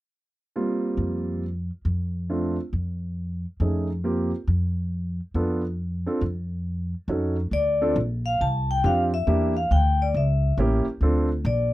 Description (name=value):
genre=jazz, small-group swing and bop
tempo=138 BPM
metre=4/4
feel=swing 66% on 8ths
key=Bb major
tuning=A4 = 440 Hz
part: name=warm concert grand piano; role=accompaniment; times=0.6-11.3 s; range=G3 to A4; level=-26 LUFS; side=right 2 dB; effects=none
part: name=upright bass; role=bass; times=1.0-11.7 s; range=A1 to F2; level=-24 LUFS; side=equal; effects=none
part: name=vibraphone with medium hard mallets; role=melody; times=7.5-11.7 s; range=D5 to A5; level=-24 LUFS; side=left 2 dB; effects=none
room=little or no reverb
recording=dry, close 1970s-style studio recording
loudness=-22 LUFS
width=side -16 dB against mid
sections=0.5-7.5 A section; 7.5-11.7 B section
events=none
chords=0.5 Fsus24; 1.4 N.C.; 2.3 Dm7; 3.2 F7alt; 4.0 Fsus24; 4.9 F6; 5.8 Dm7; 6.7 F7b9b13; 7.5 Bbadd9; 9.3 Em7b5; 10.1 A7b9; 11.0 Dm7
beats=| 0.55 0.98 1.42 1.86 | 2.29 2.73 3.17 3.60 | 4.04 4.47 4.91 5.35 | 5.78 6.22 6.66 7.09 | 7.53 7.96 8.40 8.83 | 9.27 9.71 10.14 10.57 | 11.01 11.45